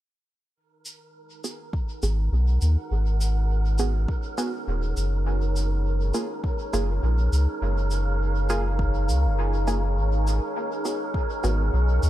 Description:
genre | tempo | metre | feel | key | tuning
ambient dub | 102 BPM | 4/4 | swing 58% on 16ths | G# dorian | A4 = 440 Hz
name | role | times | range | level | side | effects
deep dark ambient pad | sustained chords | 1.4-12.1 s | D#4 to F#5 | -33 LUFS | equal | chorus, built-in reverb, vintage 12-bit sampler grit
wind-like tuned noise texture | texture | 1.0-12.1 s | A#4 | -35 LUFS | right 2 dB | built-in reverb
shaker | drums | 0.9-12.1 s | none | -39 LUFS | right 1 dB | dub echo
filtered dub chord stab | stabs | 1.4-11.6 s | A#3 to G#4 | -32 LUFS | right 2 dB | chorus, dub echo
electronic kick drum | drums | 1.7-11.3 s | none | -28 LUFS | equal | none
soft dub sub bass | bass | 2.0-12.1 s | D#1 to D#2 | -22 LUFS | equal | none
room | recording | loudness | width
digital ambience | echo-heavy mix | -22 LUFS | side -14 dB against mid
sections
0.6-12.1 A section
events
none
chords
0.6 G#m7; 5.3 F#maj9; 10.0 G#m7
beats
| 0.56 1.15 1.73 2.32 | 2.91 3.50 4.09 4.67 | 5.26 5.85 6.44 7.03 | 7.62 8.20 8.79 9.38 | 9.97 10.56 11.14 11.73

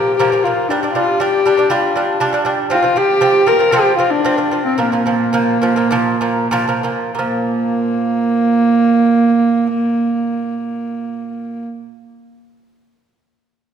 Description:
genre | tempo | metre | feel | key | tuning
mongolian traditional, Mongolian folk | 90-120 BPM | 4/4 | straight | Bb gong mode | A4 = 440 Hz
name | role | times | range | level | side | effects
warm horsehead fiddle | melody | 0.0-11.6 s | Bb3 to Bb4 | -15 LUFS | equal | none
lute | arpeggios | 0.0-11.7 s | Bb2 to D4 | -18 LUFS | right 2 dB | none
room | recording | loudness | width
wet concert hall reverb, RT60 2.2 s | minimal, uncompressed stereo recording | -13 LUFS | side -8 dB against mid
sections
0.0-7.2 A section; 7.2-12.5 B section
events
slowing down 2.7-7.2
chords
0.0 Bb5; 0.7 G5; 2.7 F5; 4.8 Bb5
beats
0.20 | 0.70 1.20 1.71 2.21 | 2.71 3.21 3.73 4.25 | 4.78 5.34 5.92 6.53 | 7.18 7.85 8.52 9.19 | 9.85 10.52 11.19

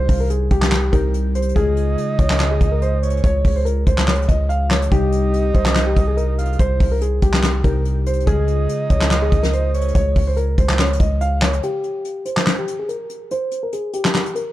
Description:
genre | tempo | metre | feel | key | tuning
hip hop, trap | 143 BPM | 4/4 | half-time | unclear | A4 = 440 Hz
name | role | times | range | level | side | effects
dark concert grand piano | melody | 0.0-14.5 s | G4 to F5 | -23 LUFS | equal | low-pass filter, digital delay
glassy digital keys | accompaniment | 0.0-11.6 s | C3 to Ab4 | -26 LUFS | left 2 dB | chorus
long sustained 808-style bass | bass | 0.0-11.6 s | C2 to Db2 | -19 LUFS | equal | none
soft brush drum kit | drums | 0.1-14.5 s | handclaps, hi-hat, kick drum, snare drum | -18 LUFS | equal | none
breathy flute-like synth lead | second line | 1.6-9.9 s | Db5 to F5 | -27 LUFS | right 5 dB | chorus, digital delay
room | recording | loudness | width
studio reverb | dark, warm production | -16 LUFS | side -15 dB against mid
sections
0.0-11.6 A section; 11.6-14.5 B section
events
break 11.6-14.5; filter sweep on grand piano 11.6-14.5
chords
0.0 Cm; 1.6 Db; 4.9 Cm; 8.3 Db; 11.6 N.C.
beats
0.30 0.72 1.14 | 1.56 1.98 2.40 2.82 | 3.24 3.66 4.08 4.50 | 4.92 5.33 5.75 6.17 | 6.59 7.01 7.43 7.85 | 8.27 8.69 9.11 9.53 | 9.95 10.37 10.79 11.21 | 11.63 12.05 12.47 12.89 | 13.31 13.73 14.15

